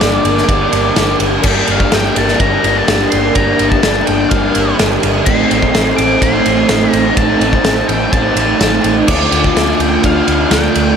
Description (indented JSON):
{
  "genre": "rock, shoegaze and dream pop",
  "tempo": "126 BPM",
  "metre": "4/4",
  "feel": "straight",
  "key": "G minor",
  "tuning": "A4 = 441 Hz",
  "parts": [
    { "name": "octave-fuzz lead guitar", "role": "melody", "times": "0.0-11.0 s", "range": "D5 to D6", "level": "-18 LUFS", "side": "left 3 dB", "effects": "distortion, ping-pong delay" },
    { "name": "crunchy overdriven guitar", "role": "riff", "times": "0.0-11.0 s", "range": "G2 to F4", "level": "-13 LUFS", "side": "right 1 dB", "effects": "lush chorus" },
    { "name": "vintage muted picked electric bass", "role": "bass", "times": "0.0-10.9 s", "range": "G1 to D2", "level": "-20 LUFS", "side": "equal", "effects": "none" },
    { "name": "loose indie drum kit", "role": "drums", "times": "0.0-10.9 s", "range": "crash cymbal, kick drum, ride cymbal, snare drum", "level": "-15 LUFS", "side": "equal", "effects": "none" }
  ],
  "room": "moderate church reverb, RT60 3.5 s",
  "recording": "dreamy mix soaked in reverb",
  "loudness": "-10 LUFS",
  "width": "side -7 dB against mid",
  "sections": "0.0-11.0 A section",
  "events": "none",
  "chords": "0.0 Gm; 5.3 Adim; 9.1 Dm"
}